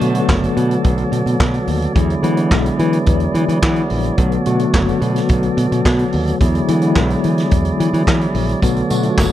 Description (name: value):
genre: disco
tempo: 108 BPM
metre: 4/4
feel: straight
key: B dorian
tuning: A4 = 437 Hz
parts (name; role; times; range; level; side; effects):
- mellow tine electric piano; accompaniment; 0.0-9.3 s; D3 to F#5; -18 LUFS; left 2 dB; medium stereo tremolo
- percussive tonewheel organ; sustained chords; 0.0-9.3 s; F#3 to D5; -23 LUFS; right 2 dB; overdrive, stopped rotary speaker
- modern bright fingered electric bass; bass; 0.0-9.3 s; F#1 to E3; -18 LUFS; equal; none
- vintage drum kit; drums; 0.0-9.3 s; handclaps, hi-hat, kick drum, snare drum; -19 LUFS; equal; none
- tambourine; percussion; 8.6-9.3 s; none; -31 LUFS; right 4 dB; none
room: little or no reverb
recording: dry, close 1970s-style studio recording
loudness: -14 LUFS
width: side -12 dB against mid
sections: 0.0-9.3 A section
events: tine electric piano fill 2.5-4.2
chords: 0.0 Bm7; 2.0 E9; 4.2 Bm7; 6.4 E9; 8.6 Bm7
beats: 0.29 0.85 1.40 | 1.96 2.52 3.07 3.63 | 4.18 4.74 5.29 5.85 | 6.40 6.96 7.51 8.07 | 8.62 9.18